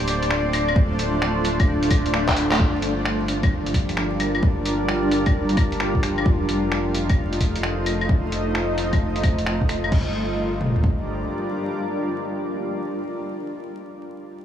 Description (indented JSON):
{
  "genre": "future garage",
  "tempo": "131 BPM",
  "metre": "4/4",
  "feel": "swing 65% on 16ths",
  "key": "G minor",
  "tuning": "A4 = 438 Hz",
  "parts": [
    { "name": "granular cloud pad", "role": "sustained chords", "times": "0.0-13.2 s", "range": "G3 to Eb5", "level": "-23 LUFS", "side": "equal", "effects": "built-in reverb, sidechain pumping" },
    { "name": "warm sub bass", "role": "bass", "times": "0.0-11.3 s", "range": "D1 to G1", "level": "-27 LUFS", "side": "equal", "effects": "sidechain pumping" },
    { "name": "lo-fi sampler-style drum kit", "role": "drums", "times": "0.0-10.0 s", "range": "cabasa, claves, crash cymbal, finger snaps, handclaps, hi-hat", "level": "-27 LUFS", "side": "left 1 dB", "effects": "none" },
    { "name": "deep house drum kit", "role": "drums", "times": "0.8-11.0 s", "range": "kick drum, toms", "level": "-20 LUFS", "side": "equal", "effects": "overdrive" }
  ],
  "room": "moderate huge ambient reverb, RT60 8.2 s",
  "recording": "vinyl crackle, small room ambience",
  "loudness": "-20 LUFS",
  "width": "side -10 dB against mid",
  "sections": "0.0-2.6 A section; 2.6-9.9 B section; 9.9-13.6 C section",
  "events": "drum fill 2.2-2.6",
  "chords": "0.0 Dm7; 2.6 Gm7; 6.3 F7; 9.9 Gm7"
}